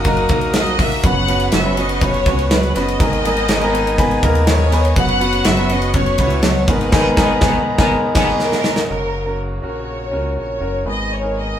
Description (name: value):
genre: piano-driven pop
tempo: 122 BPM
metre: 4/4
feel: straight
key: unclear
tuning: A4 = 439 Hz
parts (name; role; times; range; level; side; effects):
- warm studio violin section; melody; 0.0-11.6 s; A#4 to F#5; -22 LUFS; equal; none
- clear grand piano; accompaniment; 0.0-11.6 s; G#2 to C#5; -20 LUFS; left 1 dB; none
- warm studio string section; sustained chords; 0.0-11.6 s; C#3 to D#6; -31 LUFS; equal; none
- fingerpicked steel-string acoustic guitar; riff; 0.0-8.3 s; G#2 to B4; -24 LUFS; right 4 dB; none
- round analog bass; bass; 0.0-11.6 s; F#1 to D#2; -22 LUFS; equal; none
- modern studio drum kit; drums; 0.0-8.9 s; crash cymbal, hi-hat, kick drum, ride cymbal, snare drum; -18 LUFS; equal; none
- muted French horn section; second line; 1.0-8.3 s; B2 to F#4; -28 LUFS; left 1 dB; none
room: moderate studio reverb, RT60 0.6 s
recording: band playing live in one room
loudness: -14 LUFS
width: side -10 dB against mid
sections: 0.0-8.9 A section; 8.9-11.6 B section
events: band accent 6.9-8.9; drum fill 8.4-8.9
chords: 0.0 D#m/F#; 1.0 F#sus4; 3.0 G#madd9; 5.0 F#sus4; 6.7 G#madd9; 8.9 F#; 10.9 G#m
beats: 0.05 0.55 | 1.03 1.53 2.02 2.51 | 3.00 3.49 3.98 4.47 | 4.96 5.45 5.95 6.44 | 6.93 7.42 7.91 8.40 | 8.89 9.38 9.88 10.37 | 10.86 11.35